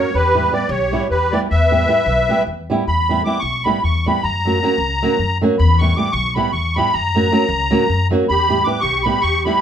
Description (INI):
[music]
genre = balkan folk, Balkan wedding band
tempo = 310 BPM (eighths)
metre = 7/8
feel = straight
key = E dorian sharp4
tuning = A4 = 440 Hz
[part]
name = musette accordion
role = melody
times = 0.0-9.6 s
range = B4 to D6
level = -18 LUFS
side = equal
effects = none
[part]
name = musette accordion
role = second line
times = 0.0-2.4, 8.3-9.6 s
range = G4 to B4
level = -25 LUFS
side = right 2 dB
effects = none
[part]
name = flamenco guitar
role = accompaniment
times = 0.0-9.6 s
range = F#3 to G4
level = -20 LUFS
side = right 2 dB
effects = none
[part]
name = upright bass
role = bass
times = 0.1-9.5 s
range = B1 to F#2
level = -20 LUFS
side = left 2 dB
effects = none
[sound]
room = wet studio reverb, RT60 0.7 s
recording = band playing live in one room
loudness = -14 LUFS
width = side -9 dB against mid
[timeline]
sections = 0.0-2.9 A section; 2.9-9.6 A section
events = none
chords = 0.1 Em; 4.2 F#; 5.6 Em; 6.9 F#; 8.3 Em